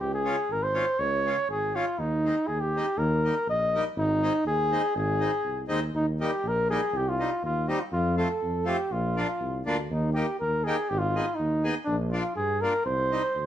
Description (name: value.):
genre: alpine folk, alpine dance band.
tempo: 121 BPM.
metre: 2/4.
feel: straight.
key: Ab major, Eb major from 5.9 s.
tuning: A4 = 440 Hz.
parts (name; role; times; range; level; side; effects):
mellow flugelhorn; melody; 0.0-13.5 s; D4 to Eb5; -27 LUFS; equal; none.
mellow tuba; bass; 0.0-13.5 s; Ab1 to G2; -30 LUFS; equal; none.
accordion; accompaniment; 0.2-13.2 s; G3 to Ab4; -32 LUFS; left 1 dB; none.
room: light reverb.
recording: band playing live in one room.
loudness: -24 LUFS.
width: side -11 dB against mid.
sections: 0.0-5.9 A section; 5.9-13.5 B section.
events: none.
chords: 0.0 Db; 2.0 Ab/Eb; 3.0 Eb; 4.0 Ab; 5.9 Eb; 6.9 Cm; 7.9 F; 8.9 Bbadd9; 9.9 Eb; 10.9 Abm; 11.9 Bb; 12.9 Cm.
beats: | 0.00 0.50 | 0.99 1.49 | 1.99 2.49 | 2.98 3.48 | 3.97 4.46 | 4.95 5.45 | 5.95 6.44 | 6.94 7.43 | 7.93 8.42 | 8.91 9.40 | 9.90 10.40 | 10.89 11.38 | 11.88 12.37 | 12.86 13.36.